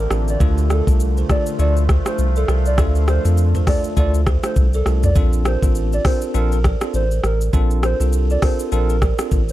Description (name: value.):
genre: afrobeats.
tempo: 101 BPM.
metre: 4/4.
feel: swing 58% on 16ths.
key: unclear.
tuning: A4 = 436 Hz.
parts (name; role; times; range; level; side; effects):
hollow clarinet-like synth lead; melody; 0.0-9.5 s; A4 to D5; -26 LUFS; equal; chorus, tape echo.
deep dark ambient pad; sustained chords; 0.0-5.1 s; D3 to G4; -31 LUFS; left 2 dB; chorus, built-in reverb.
buzzing kalimba; riff; 0.0-9.5 s; F4 to D5; -29 LUFS; right 10 dB; tape echo.
round analog bass; bass; 0.0-9.5 s; A1 to F2; -17 LUFS; equal; none.
bell-like tine electric piano; accompaniment; 0.1-9.4 s; A3 to A4; -26 LUFS; left 1 dB; medium stereo tremolo.
afro-pop drum kit; drums; 0.1-9.5 s; hi-hat, kick drum, rim click, shaker, toms; -18 LUFS; equal; none.
room: little or no reverb.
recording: dark, warm production.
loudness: -15 LUFS.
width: side -15 dB against mid.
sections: 0.0-5.2 A section; 5.2-9.5 B section.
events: none.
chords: 0.4 Dm; 5.2 Bbmaj7.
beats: | 0.41 1.00 1.59 2.19 | 2.78 3.38 3.97 4.56 | 5.16 5.75 6.34 6.94 | 7.53 8.13 8.72 9.32.